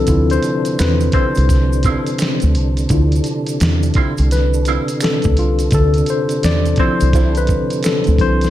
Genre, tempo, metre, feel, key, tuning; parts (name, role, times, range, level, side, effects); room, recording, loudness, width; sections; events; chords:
R&B, neo-soul; 85 BPM; 4/4; swing 64% on 16ths; D dorian; A4 = 440 Hz
tine electric piano; accompaniment; 0.0-8.5 s; F3 to D5; -19 LUFS; left 4 dB; medium stereo tremolo
percussive tonewheel organ; sustained chords; 0.0-8.5 s; C3 to D4; -22 LUFS; right 2 dB; fast rotary speaker, overdrive, chorus vibrato
deep dub fingered electric bass; bass; 0.0-8.5 s; C2 to E2; -15 LUFS; equal
dusty soul sampler-style drum kit; drums; 0.1-8.5 s; hi-hat, kick drum, snare drum; -19 LUFS; equal
maracas and finger snaps; percussion; 0.1-8.5 s; -32 LUFS; right 7 dB
vintage hollow-body jazz guitar; second line; 1.1-7.3 s; F3 to E4; -24 LUFS; right 7 dB; wah
light reverb, digital ambience; -13 LUFS; side -13 dB against mid
0.0-8.5 A section
tine electric piano solo 0.0-8.5
0.0 Dm9